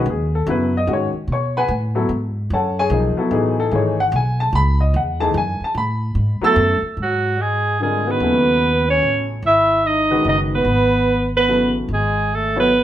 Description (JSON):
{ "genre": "modal jazz", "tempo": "147 BPM", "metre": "3/4", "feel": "swing 64% on 8ths", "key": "G# phrygian", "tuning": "A4 = 440 Hz", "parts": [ { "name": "warm baby grand piano", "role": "accompaniment", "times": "0.0-12.7 s", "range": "C#3 to E6", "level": "-20 LUFS", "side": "left 2 dB", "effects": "none" }, { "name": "upright bass", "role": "bass", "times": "0.0-12.8 s", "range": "F#1 to B2", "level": "-21 LUFS", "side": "equal", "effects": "none" }, { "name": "clear trombone", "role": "second line", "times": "6.4-12.8 s", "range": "F#3 to E4", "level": "-22 LUFS", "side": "left 2 dB", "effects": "none" }, { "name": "bright alto saxophone", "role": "melody", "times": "6.5-12.8 s", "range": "F#4 to E5", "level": "-17 LUFS", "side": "right 3 dB", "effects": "none" } ], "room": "wet studio reverb, RT60 0.8 s", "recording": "band playing live in one room", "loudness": "-16 LUFS", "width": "side -12 dB against mid", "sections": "0.0-7.0 A section; 7.0-12.8 B section", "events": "none", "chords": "0.0 G#m7; 2.1 F#madd9; 7.0 G#m7; 11.9 F#madd9", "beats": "0.07 0.48 | 0.88 1.29 1.70 | 2.10 2.51 2.92 | 3.32 3.73 4.14 | 4.54 4.95 5.36 | 5.76 6.17 6.58 | 6.99 7.39 7.80 | 8.21 8.62 9.03 | 9.44 9.85 10.25 | 10.66 11.07 11.48 | 11.89 12.29 12.70" }